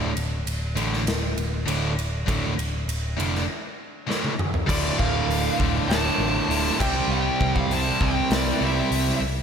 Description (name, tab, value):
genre	hard rock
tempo	99 BPM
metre	4/4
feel	straight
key	D minor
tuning	A4 = 440 Hz
part	crunchy overdriven guitar	riff	0.0-9.2 s	D2 to C4	-29 LUFS	right 9 dB	none
part	high-gain distorted guitar	riff	0.0-9.2 s	D2 to C4	-29 LUFS	left 9 dB	distortion
part	picked electric bass	bass	0.0-9.4 s	D1 to C2	-27 LUFS	equal	none
part	big rock drum kit	drums	0.2-9.2 s	crash cymbal, hi-hat, kick drum, ride cymbal, snare drum, toms	-27 LUFS	left 1 dB	none
part	high-gain lead guitar	melody	4.7-9.2 s	D5 to A5	-27 LUFS	right 1 dB	distortion
part	raw garage guitar	riff	4.7-9.2 s	D2 to C5	-30 LUFS	equal	overdrive, slapback echo
room	moderate lush hall reverb, RT60 2.7 s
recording	big arena sound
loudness	-21 LUFS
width	side -7 dB against mid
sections	0.0-4.7 A section; 4.7-9.4 B section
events	drum fill 4.1-4.7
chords	0.0 D5; 4.7 Dm; 6.8 C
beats	0.46 1.06 1.67 | 2.27 2.87 3.48 4.08 | 4.68 5.29 5.89 6.49 | 7.10 7.70 8.30 8.91